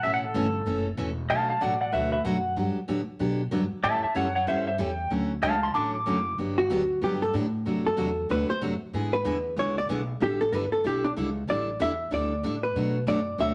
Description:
country; 189 BPM; 4/4; swing 61% on 8ths; A4 = 441 Hz
pedal steel guitar; second line; 0.0-6.4 s; A4 to D6; -29 LUFS; equal
picked steel-string acoustic guitar; accompaniment; 0.0-13.5 s; B2 to A4; -32 LUFS; equal
upright bass; bass; 0.0-13.5 s; E1 to B2; -35 LUFS; equal
hollow-body jazz guitar; second line; 6.6-13.5 s; D4 to E5; -29 LUFS; equal
wet studio reverb, RT60 0.8 s; -27 LUFS; mono
0.0-6.4 A section; 6.4-13.5 A section
pedal steel guitar solo 0.0-6.4; hollow-body jazz guitar solo 6.4-13.5
0.0 Aadd9; 1.3 Bm7; 2.6 Gmaj7; 3.8 A7; 5.1 Dmaj7; 6.4 Gmaj9; 7.7 D7; 8.9 E7; 10.2 A9sus4; 11.5 A7sus4; 12.8 Bm7

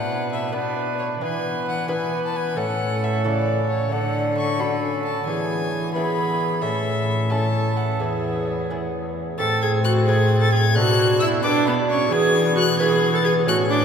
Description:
classical, renaissance-style consort dance; 88 BPM (dotted quarters); 6/8; straight; E mixolydian; A4 = 440 Hz
warm violin; melody; 0.0-13.8 s; C#5 to A6; -26 LUFS; left 3 dB
warm viola; second line; 0.0-13.8 s; B3 to B4; -24 LUFS; right 2 dB
lute; accompaniment; 0.0-13.8 s; E2 to D5; -30 LUFS; left 2 dB
mellow bassoon; accompaniment; 0.0-13.8 s; B3 to D4; -26 LUFS; left 1 dB
dark cello; bass; 0.0-13.8 s; E2 to E3; -24 LUFS; right 1 dB
wet cathedral reverb, RT60 6.1 s; minimal, uncompressed stereo recording; -19 LUFS; side -7 dB against mid
0.0-9.4 A section; 9.4-13.8 A section
0.0 Bm; 1.2 E; 2.6 A; 3.9 D; 5.3 E; 6.6 A; 8.0 E; 9.4 Am; 10.8 Bm; 12.1 E

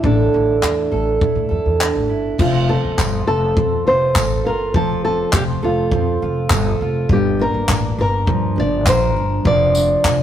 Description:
acoustic pop; 102 BPM; 4/4; straight; A4 = 440 Hz
nylon-string guitar; melody; 0.0-10.2 s; D4 to D5; -20 LUFS; left 1 dB
fingerpicked steel-string acoustic guitar; accompaniment; 0.0-10.2 s; G2 to Bb4; -20 LUFS; right 3 dB
upright bass; bass; 0.0-10.2 s; F1 to A2; -21 LUFS; left 1 dB
compact cocktail drum kit; drums; 0.0-10.2 s; crash cymbal, handclaps, kick drum, tambourine; -20 LUFS; equal
tambourine; percussion; 3.0-10.2 s; -36 LUFS; right 3 dB
moderate stone room reverb, RT60 1.2 s; rough rehearsal-room recording, tube saturation; -15 LUFS; side -10 dB against mid
0.0-2.4 A section; 2.4-10.2 B section
0.0 Asus4; 2.4 F; 7.1 Gm7; 9.5 Dm/F

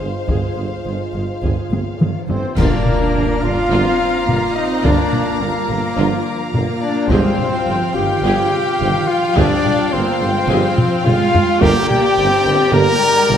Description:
cinematic, epic orchestral film score; 106 BPM; 4/4; straight; A4 = 440 Hz
warm symphonic violin section; melody; 0.0-13.4 s; Bb4 to Bb5; -28 LUFS; left 4 dB
warm symphonic violin section; second line; 0.0-13.4 s; C5 to Bb5; -26 LUFS; left 3 dB
warm symphonic viola section; accompaniment; 0.0-13.4 s; F4 to D5; -26 LUFS; right 2 dB
mellow French horn section; sustained chords; 0.0-13.4 s; Ab3 to Bb4; -21 LUFS; left 3 dB
dark symphonic cello section; bass; 0.0-13.4 s; G2 to D4; -24 LUFS; right 3 dB
warm studio double bass section; bass; 0.0-13.4 s; G1; -24 LUFS; right 3 dB
warm tuba; bass; 0.0-13.4 s; G1; -24 LUFS; right 3 dB
taiko ensemble; drums; 0.3-13.4 s; -20 LUFS; left 1 dB
cymbal swell, clash cymbals and concert bass drum; percussion; 0.3-3.7 s; -26 LUFS; equal
silver concert flute; second line; 2.3-13.4 s; Bb4 to Bb5; -26 LUFS; left 2 dB
clear trumpet; stabs; 2.3-13.4 s; Bb3 to Bb4; -22 LUFS; equal
dark trombone section; sustained chords; 2.6-12.9 s; D3 to D4; -29 LUFS; right 4 dB
pipe organ, plenum; sustained chords; 2.6-13.4 s; F3 to G5; -26 LUFS; left 1 dB
timpani; percussion; 2.6-3.4, 7.1-7.9 s; G2; -25 LUFS; left 2 dB
impact; sound effects; 2.6-4.8 s; -28 LUFS; left 1 dB
wet scoring stage reverb, RT60 1.9 s; -14 LUFS; side -9 dB against mid
0.0-2.6 A section; 2.6-13.4 B section
drum fill 1.7-2.6, 10.8-11.6; band accent 2.6-3.1; impact 2.6-4.8
0.0 Fmadd9/G; 2.6 Bb/G; 7.1 Fmadd9/G; 11.6 Gm

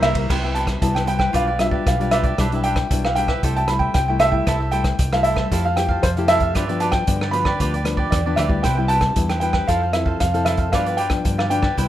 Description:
samba and choro; 115 BPM; 4/4; straight; A4 = 440 Hz
warm baby grand piano; melody; 0.0-11.9 s; C5 to B5; -22 LUFS; right 1 dB
cavaquinho; accompaniment; 0.0-11.9 s; D4 to G5; -27 LUFS; right 4 dB
nylon-string guitar; accompaniment; 0.0-11.9 s; G2 to A4; -26 LUFS; left 4 dB
vintage muted fingered electric bass; bass; 0.0-11.9 s; B1 to G2; -24 LUFS; equal
vintage drum kit; drums; 0.0-11.9 s; crash cymbal, hi-hat, kick drum, ride cymbal, rim click; -23 LUFS; equal
light reverb, studio ambience; rough home demo mix; -17 LUFS; side -12 dB against mid
0.3-11.9 A section
0.3 Cmaj7; 1.3 G7/B; 2.4 Em7/B; 3.4 Am7/C; 5.5 Fmaj9; 6.6 G7; 8.6 Cmaj7; 9.7 Fmaj7; 10.7 G7

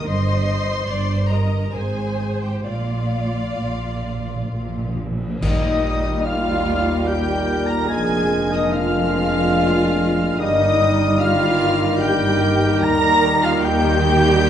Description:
classical, slow romantic movement for symphony orchestra; 63-77 BPM; 3/4; rubato; Eb major; A4 = 440 Hz
rich studio violin section; melody; 0.0-14.5 s; F5 to Bb6; -30 LUFS; left 2 dB
rich studio violin section; second line; 0.0-14.5 s; F4 to Bb5; -30 LUFS; left 3 dB
rich studio viola section; accompaniment; 0.0-14.5 s; Eb4 to Eb5; -25 LUFS; equal
rich studio cello section; bass; 0.1-14.5 s; Eb2 to Eb3; -26 LUFS; right 2 dB
rich studio double bass section; bass; 0.1-14.5 s; F1 to Eb2; -24 LUFS; right 2 dB
cymbal swell, clash cymbals and concert bass drum; percussion; 2.7-7.0 s; -28 LUFS; left 1 dB
timpani; percussion; 2.7-6.6 s; Bb2 to Eb3; -30 LUFS; left 1 dB
clear oboe; second line; 5.4-14.5 s; Eb5 to Bb5; -28 LUFS; left 1 dB
large flute ensemble; second line; 5.4-14.5 s; Eb5 to Bb5; -27 LUFS; left 1 dB
mellow clarinet; second line; 5.4-14.5 s; Bb4; -31 LUFS; left 3 dB
mellow bassoon; accompaniment; 5.4-14.5 s; G3 to Ab3; -28 LUFS; equal
dark trombone section; sustained chords; 5.4-14.5 s; Bb2 to Ab3; -28 LUFS; right 2 dB
mellow French horn section; sustained chords; 5.4-14.5 s; Bb3 to Eb4; -24 LUFS; left 2 dB
dark trumpet section; stabs; 5.4-14.5 s; Eb5 to Bb5; -25 LUFS; equal
wet recital hall reverb, RT60 1.4 s; nothing above 10.5 kHz; -17 LUFS; side -9 dB against mid
0.0-5.4 A section; 5.4-14.5 B section
timpani fill 2.7-5.4; band accent 5.4-6.3
0.1 Eb/G; 1.7 Ab; 2.7 Bb; 5.4 Eb; 7.9 Bb7/F; 10.4 Eb/G; 12.8 Eb

